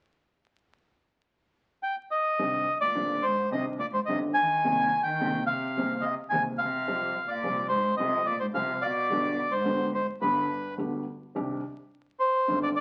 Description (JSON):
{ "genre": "tango", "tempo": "107 BPM", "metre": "4/4", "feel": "rubato", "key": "C minor", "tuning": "A4 = 439 Hz", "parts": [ { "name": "bandoneon", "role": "melody", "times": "1.8-12.8 s", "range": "B4 to Ab5", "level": "-29 LUFS", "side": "equal", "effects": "none" }, { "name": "warm upright piano", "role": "accompaniment", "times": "2.4-12.7 s", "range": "G1 to Ab4", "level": "-35 LUFS", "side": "equal", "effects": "none" }, { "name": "upright bass", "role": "bass", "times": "2.4-12.7 s", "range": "G1 to F2", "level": "-46 LUFS", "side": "equal", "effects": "none" }, { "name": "warm cello", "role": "second line", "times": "2.8-10.7 s", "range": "G2 to Eb3", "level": "-38 LUFS", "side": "equal", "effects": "none" } ], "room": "wet studio reverb, RT60 0.8 s", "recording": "very old 78 rpm record, vinyl crackle", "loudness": "-28 LUFS", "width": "mono", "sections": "0.1-2.4 A section; 2.4-11.4 B section; 11.4-12.8 C section", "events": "none", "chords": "0.1 N.C.; 2.4 Cmadd9; 4.6 Abadd9/C; 6.9 Fsus2; 9.1 G; 11.4 Cmadd9" }